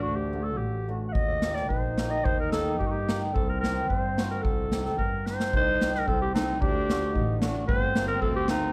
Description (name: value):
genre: klezmer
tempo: 110 BPM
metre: 2/4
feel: straight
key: C dorian sharp4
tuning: A4 = 436 Hz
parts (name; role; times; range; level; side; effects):
- growling clarinet; melody; 0.0-8.7 s; Eb4 to F#5; -32 LUFS; equal; plate reverb
- clear trombone; second line; 0.0-8.7 s; C4 to Eb4; -36 LUFS; equal; none
- warm double bass; bass; 0.0-8.5 s; G1 to G2; -34 LUFS; equal; none
- cimbalom; accompaniment; 0.3-8.6 s; A3 to A4; -37 LUFS; equal; none
- street-band drum kit; drums; 1.2-8.6 s; kick drum, snare drum; -32 LUFS; equal; none
room: light reverb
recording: dark, warm production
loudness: -27 LUFS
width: mono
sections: 0.0-5.5 A section; 5.5-8.7 B section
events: speeding up 0.0-8.7; drum fill 5.3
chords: 0.0 D; 1.1 Eb; 3.4 Cm; 6.6 D; 7.7 Gm